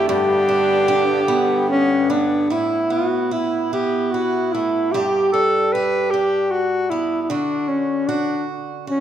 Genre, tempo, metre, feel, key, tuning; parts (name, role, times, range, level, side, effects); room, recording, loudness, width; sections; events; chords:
celtic folk, Celtic slow air; 75 BPM; 3/4; rubato; A mixolydian; A4 = 440 Hz
clear alto saxophone; melody; 0.0-9.0 s; C#4 to B4; -18 LUFS; left 1 dB
rich viola; second line; 0.0-1.6 s; D4; -29 LUFS; right 3 dB
picked swing-style acoustic guitar; accompaniment; 0.0-9.0 s; G2 to G4; -23 LUFS; right 5 dB
accordion; sustained chords; 0.0-2.5 s; G2 to B3; -25 LUFS; left 2 dB
wet recital hall reverb, RT60 1.6 s; recorded in a church or concert hall; -17 LUFS; side -10 dB against mid
0.0-2.5 A section; 2.5-9.0 B section
0.1 G; 2.5 Asus2; 4.9 G; 7.3 D